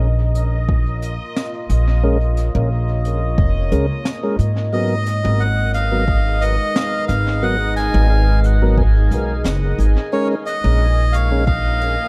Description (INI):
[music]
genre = ambient dub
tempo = 89 BPM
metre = 4/4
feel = swing 53% on 16ths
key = unclear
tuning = A4 = 440 Hz
[part]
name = deep dark ambient pad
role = sustained chords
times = 0.0-12.1 s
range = E#3 to C#5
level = -31 LUFS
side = equal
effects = chorus, built-in reverb
[part]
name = upright bass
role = bass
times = 0.0-12.0 s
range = E#1 to G#2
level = -19 LUFS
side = equal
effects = none
[part]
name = bubbling stepped-filter texture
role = texture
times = 0.0-12.1 s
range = D#5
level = -33 LUFS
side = equal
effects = chorus, built-in reverb
[part]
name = jazz brush drum kit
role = drums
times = 0.3-12.0 s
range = hi-hat, snare drum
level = -30 LUFS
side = equal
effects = dub echo
[part]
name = electronic kick drum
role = drums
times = 0.7-11.6 s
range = none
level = -21 LUFS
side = equal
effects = overdrive
[part]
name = tonewheel organ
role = stabs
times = 2.0-11.4 s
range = F#3 to A#4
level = -27 LUFS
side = equal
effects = slow rotary speaker, low-pass filter, dub echo
[part]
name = melodica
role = melody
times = 4.7-12.1 s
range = C#5 to G#5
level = -24 LUFS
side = equal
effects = dub echo
[sound]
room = small room ambience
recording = echo-heavy mix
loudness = -18 LUFS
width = mono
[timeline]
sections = 0.0-12.1 A section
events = fade-in on ambient pad 0.0-12.1; filter sweep on tonewheel organ 0.0-12.1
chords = 0.0 A#m7; 4.7 G#m9; 10.1 A#m7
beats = 0.01 0.69 1.36 | 2.04 2.71 3.38 4.06 | 4.73 5.41 6.08 6.75 | 7.43 8.10 8.78 9.45 | 10.12 10.80 11.47